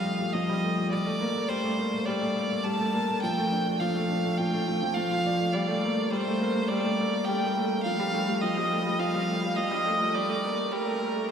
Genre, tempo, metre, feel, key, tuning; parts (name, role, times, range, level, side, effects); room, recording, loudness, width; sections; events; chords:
electronica; 104 BPM; 4/4; straight; G minor; A4 = 441 Hz
clear violin; melody; 0.0-11.3 s; Bb4 to A5; -29 LUFS; right 1 dB; shimmer reverb
felt-muted upright piano; riff; 0.0-11.3 s; F3 to D5; -27 LUFS; equal; shimmer reverb
wet concert hall reverb, RT60 1.9 s; high-pass filter; -25 LUFS; side -7 dB against mid
0.0-11.3 A section
build-up 0.0-11.3
0.0 Fadd9; 0.9 Gmadd9; 3.2 Dm; 5.5 Gmadd9; 7.9 Fadd9; 10.2 Gmadd9